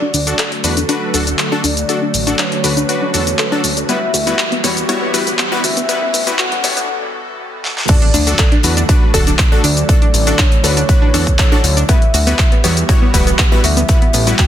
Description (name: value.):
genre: progressive house.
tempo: 120 BPM.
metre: 4/4.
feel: straight.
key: D major.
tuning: A4 = 440 Hz.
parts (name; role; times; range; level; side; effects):
soft octave-layered synth lead; melody; 0.0-14.5 s; C#5 to G5; -23 LUFS; left 1 dB; chorus, tremolo, cassette tape, sidechain pumping, dub echo.
airy breathy pad; sustained chords; 0.0-14.5 s; D3 to B4; -23 LUFS; right 1 dB; chorus, sidechain pumping.
analog pluck; arpeggios; 0.0-14.5 s; B3 to A4; -22 LUFS; equal; chorus, sidechain pumping, dub echo.
riser and impact; sound effects; 0.0-9.9 s; none; -28 LUFS; right 1 dB; none.
fat analog bass; bass; 0.1-14.3 s; D1 to E2; -18 LUFS; equal; sidechain pumping.
big-room dance drum kit; drums; 0.1-14.5 s; crash cymbal, handclaps, hi-hat, shaker, snare drum; -18 LUFS; left 1 dB; sidechain pumping on hats, high-pass filter on hats, small room ambience, sidechain pumping on perc, high-pass filter on perc, high-pass filter on snare, sidechain pumping on cymbals, high-pass filter on cymbals.
supersaw stab; stabs; 0.3-14.4 s; G3 to C#5; -21 LUFS; left 3 dB; sidechain pumping, dub echo.
electronic kick drum; drums; 7.9-14.5 s; none; -12 LUFS; equal; small room ambience.
modern studio drum kit; drums; 7.9-14.5 s; hi-hat, snare drum; -28 LUFS; left 4 dB; none.
room: light reverb, digital ambience.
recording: dense, heavily limited modern master, high-pass filter.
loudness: -11 LUFS.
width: side -10 dB against mid.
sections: 0.0-7.9 A section; 7.9-14.5 B section.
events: build-up 0.0-7.9; filter sweep on synth pluck 0.0-7.9; break 6.9-7.9; drum fill 7.6; drop 7.9-14.5; impact 7.9-9.9.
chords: 0.0 D; 3.9 Emadd9/D; 7.9 D; 11.9 Emadd9/D.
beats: 0.39 0.89 1.39 | 1.89 2.39 2.89 3.39 | 3.89 4.39 4.89 5.39 | 5.89 6.39 6.89 7.39 | 7.89 8.39 8.89 9.39 | 9.89 10.39 10.89 11.39 | 11.89 12.39 12.89 13.39 | 13.89 14.39.